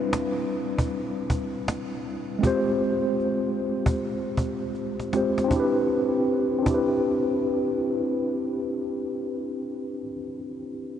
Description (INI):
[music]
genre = lo-fi hip hop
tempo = 78 BPM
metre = 4/4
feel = swing 64% on 16ths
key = C major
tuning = A4 = 441 Hz
[part]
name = tine electric piano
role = accompaniment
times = 0.0-11.0 s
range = G3 to C5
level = -24 LUFS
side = equal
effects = medium stereo tremolo, cassette tape, low-pass filter
[part]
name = cajon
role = drums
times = 0.1-6.9 s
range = none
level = -30 LUFS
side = equal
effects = none
[sound]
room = wet huge ambient reverb, RT60 8.2 s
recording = dreamy mix soaked in reverb, cassette tape, nothing above 10.3 kHz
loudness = -24 LUFS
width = side -9 dB against mid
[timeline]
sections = 0.0-5.5 A section; 5.5-8.6 B section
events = drum fill 4.7-5.5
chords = 0.0 Cmaj7; 2.4 Fmadd9; 5.5 Cmaj7